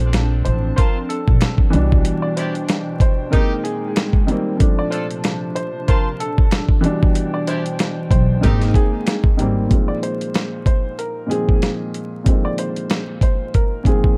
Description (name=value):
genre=hip hop, boom-bap hip-hop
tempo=94 BPM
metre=4/4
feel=swing 57% on 16ths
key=Bb major, Bb mixolydian from 9.7 s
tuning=A4 = 439 Hz
part: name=warm upright piano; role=melody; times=0.0-14.2 s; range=Ab4 to D5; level=-29 LUFS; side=equal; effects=high-pass filter, low-pass filter, digital delay
part: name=dark upright piano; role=accompaniment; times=0.0-14.2 s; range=Bb2 to D4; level=-26 LUFS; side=equal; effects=cassette tape, high-pass filter, low-pass filter
part: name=hollow soft pad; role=sustained chords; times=0.0-9.7 s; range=Bb2 to A5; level=-31 LUFS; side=equal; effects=chorus, high-pass filter, low-pass filter
part: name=upright bass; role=bass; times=0.0-2.0, 8.1-9.6 s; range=Ab1 to C2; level=-21 LUFS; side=equal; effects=none
part: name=dusty soul sampler-style drum kit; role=drums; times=0.0-14.2 s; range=hi-hat, kick drum, snare drum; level=-19 LUFS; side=equal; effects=none
part: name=finger snap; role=percussion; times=0.1-9.2 s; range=none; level=-40 LUFS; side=equal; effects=none
part: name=clear horn section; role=stabs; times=0.8-8.6 s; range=C4 to A5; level=-32 LUFS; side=equal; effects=high-pass filter, low-pass filter, digital delay
room=little or no reverb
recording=dark, warm production, vinyl crackle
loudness=-18 LUFS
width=mono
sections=0.0-9.7 A section; 9.7-14.2 B section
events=none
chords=0.0 Bbmaj9; 1.7 Cmaj9; 3.3 Abmaj9; 4.6 Bbmaj9; 6.8 Cmaj9; 8.4 Abmaj9; 9.7 Bb9sus4